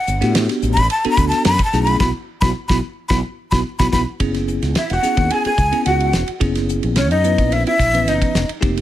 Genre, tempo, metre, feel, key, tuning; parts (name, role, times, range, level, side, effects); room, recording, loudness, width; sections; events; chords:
electric jazz fusion; 109 BPM; 4/4; straight; A4 = 441 Hz
breathy jazz flute; melody; 0.0-8.5 s; C#5 to B5; -19 LUFS; left 2 dB; slapback echo
fretless electric bass; bass; 0.1-8.8 s; E1 to A2; -20 LUFS; equal
damped 70s drum kit; drums; 0.1-8.8 s; hi-hat, kick drum, ride cymbal, snare drum; -21 LUFS; equal
bell-like tine electric piano; accompaniment; 0.2-8.8 s; E3 to B4; -22 LUFS; right 1 dB; medium stereo tremolo
vintage hollow-body jazz guitar; second line; 4.8-8.5 s; C#4 to G#4; -23 LUFS; right 3 dB; slapback echo
little or no reverb; -15 LUFS; side -13 dB against mid
0.0-4.2 A section; 4.2-8.8 B section
flute solo 0.0-4.2; band accent 2.0-4.2; drum fill 3.7-4.2
0.0 A13sus4; 1.7 Bsus4; 4.2 F#9sus4